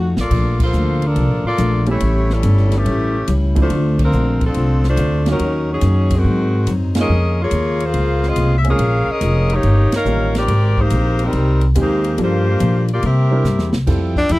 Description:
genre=jazz, big band swing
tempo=142 BPM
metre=4/4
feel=swing 68% on 8ths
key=unclear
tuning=A4 = 440 Hz
part: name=clear saxophone section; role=melody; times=0.0-13.7 s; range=Eb3 to F5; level=-20 LUFS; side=left 1 dB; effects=none
part: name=picked steel-string acoustic guitar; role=accompaniment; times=0.0-14.4 s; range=G2 to Bb4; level=-24 LUFS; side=left 3 dB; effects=none
part: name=upright bass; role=bass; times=0.0-14.4 s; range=F1 to C3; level=-16 LUFS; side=equal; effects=none
part: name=swinging big-band drum kit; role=drums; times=0.2-14.4 s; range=crash cymbal, hi-hat, kick drum, ride cymbal, snare drum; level=-22 LUFS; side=equal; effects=none
part: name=clear baby grand piano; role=accompaniment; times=1.9-14.1 s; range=F3 to Bb4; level=-23 LUFS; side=right 4 dB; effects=none
part: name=mellow saxophone section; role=sustained chords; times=13.9-14.4 s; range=F4 to G5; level=-29 LUFS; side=right 2 dB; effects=none
part: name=bright tenor saxophone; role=melody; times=14.2-14.4 s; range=D4 to E4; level=-15 LUFS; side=left 1 dB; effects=none
room=little or no reverb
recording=dry, close 1970s-style studio recording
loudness=-14 LUFS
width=side -19 dB against mid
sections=0.3-13.9 A section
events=drum fill 0.0-0.3, 13.5-13.9; band accent 0.5, 3.9, 6.9, 9.9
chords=0.3 Bbmaj7; 2.0 A7; 3.7 Dm7; 5.4 Ebm7; 6.2 Ab7; 7.1 Db6; 8.8 Bbm7; 9.6 Eb7; 10.5 Abmaj9; 12.2 Gm7; 13.0 C7; 13.9 Fmaj9

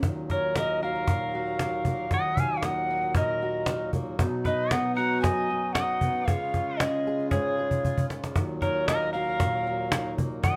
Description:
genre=acoustic folk duo or small band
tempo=115 BPM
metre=4/4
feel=straight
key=unclear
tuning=A4 = 440 Hz
part: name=fingerpicked steel-string acoustic guitar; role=accompaniment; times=0.0-10.6 s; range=F#2 to G#4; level=-36 LUFS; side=equal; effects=none
part: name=hand-pumped harmonium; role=sustained chords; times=0.0-10.6 s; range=D#2 to E#4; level=-37 LUFS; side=equal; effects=none
part: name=cajon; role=percussion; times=0.0-10.6 s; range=none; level=-30 LUFS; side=equal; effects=none
part: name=mellow hollow mid whistle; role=melody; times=0.3-10.6 s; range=C#5 to A#5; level=-31 LUFS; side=equal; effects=none
part: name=pedal steel guitar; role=second line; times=0.3-10.6 s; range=G#4 to F#5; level=-36 LUFS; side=equal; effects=none
room=moderate studio reverb, RT60 0.6 s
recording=none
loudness=-27 LUFS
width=mono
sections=0.0-10.6 A section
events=drum fill 7.7-8.4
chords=0.0 D#m; 4.2 B; 6.3 C#; 8.4 D#m

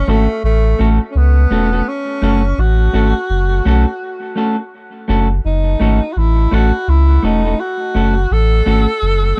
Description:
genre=roots reggae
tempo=84 BPM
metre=4/4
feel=swing 64% on 16ths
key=F# dorian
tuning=A4 = 440 Hz
part: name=clear tenor saxophone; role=melody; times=0.0-9.4 s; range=A3 to A4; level=-22 LUFS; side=equal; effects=dub echo
part: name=warm sub bass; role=bass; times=0.0-9.3 s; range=E1 to C#2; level=-15 LUFS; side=equal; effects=none
part: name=clean electric guitar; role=accompaniment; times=0.1-9.4 s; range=A3 to A4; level=-21 LUFS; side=equal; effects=dub echo
room=little or no reverb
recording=dry, close 1970s-style studio recording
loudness=-15 LUFS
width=mono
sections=0.0-9.4 A section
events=none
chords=0.0 F#m

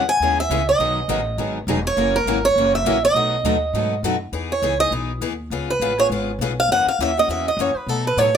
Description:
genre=acoustic string swing (jazz manouche)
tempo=203 BPM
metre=4/4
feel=swing 58% on 8ths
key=E major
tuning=A4 = 440 Hz
part: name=picked swing-style acoustic guitar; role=melody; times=0.0-8.4 s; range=A4 to G#5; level=-19 LUFS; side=right 2 dB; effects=none
part: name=picked steel-string acoustic guitar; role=accompaniment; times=0.0-8.3 s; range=B2 to G#4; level=-25 LUFS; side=left 8 dB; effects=none
part: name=picked steel-string acoustic guitar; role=accompaniment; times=0.0-4.1 s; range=B2 to B4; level=-28 LUFS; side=right 6 dB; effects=none
part: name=upright bass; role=bass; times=0.0-8.4 s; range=E1 to B2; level=-26 LUFS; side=left 1 dB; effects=none
room=light reverb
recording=none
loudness=-18 LUFS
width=side -8 dB against mid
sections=0.0-4.3 A section; 4.3-8.4 B section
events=steel-string acoustic guitar solo 4.3-8.4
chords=0.0 C#m7; 0.8 G#m7; 2.0 F#7; 3.2 B7; 4.3 Emaj7; 5.5 C#7; 6.7 F#7

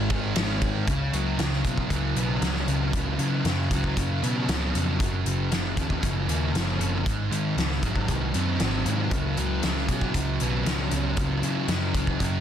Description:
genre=rock, shoegaze and dream pop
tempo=117 BPM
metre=4/4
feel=straight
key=unclear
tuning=A4 = 438 Hz
part: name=fuzz guitar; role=riff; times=0.0-12.4 s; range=F#2 to B#3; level=-26 LUFS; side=equal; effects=distortion, analog chorus
part: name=vintage muted picked electric bass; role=bass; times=0.0-12.4 s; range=F#1 to C#3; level=-28 LUFS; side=equal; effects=none
part: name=loose indie drum kit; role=drums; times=0.1-12.3 s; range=hi-hat, kick drum, ride cymbal, snare drum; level=-29 LUFS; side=equal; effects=none
room=light reverb, studio reverb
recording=dense, heavily limited modern master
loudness=-23 LUFS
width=side -9 dB against mid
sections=0.9-12.4 A section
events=none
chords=0.0 G#5; 0.9 C#7sus4; 5.0 F#maj7; 7.1 G#7; 9.1 C#7sus4

